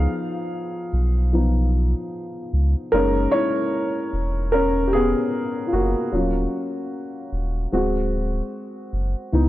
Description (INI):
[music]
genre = lo-fi hip hop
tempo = 75 BPM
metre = 4/4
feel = swing 65% on 16ths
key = unclear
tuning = A4 = 440 Hz
[part]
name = dark upright piano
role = accompaniment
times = 0.0-9.5 s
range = E3 to E#5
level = -22 LUFS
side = equal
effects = cassette tape, low-pass filter
[part]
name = warm sub bass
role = bass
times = 0.0-9.5 s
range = D1 to C#2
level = -21 LUFS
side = equal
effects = none
[sound]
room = light reverb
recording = none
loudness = -20 LUFS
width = side -15 dB against mid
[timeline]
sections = 0.0-9.5 A section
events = upright piano solo 0.0-9.5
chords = 0.0 C#7 (rootless); 2.9 F#6; 6.1 D#m7; 7.7 D7#11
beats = 0.52 1.32 2.12 | 2.92 3.72 4.52 5.32 | 6.12 6.92 7.72 8.52 | 9.32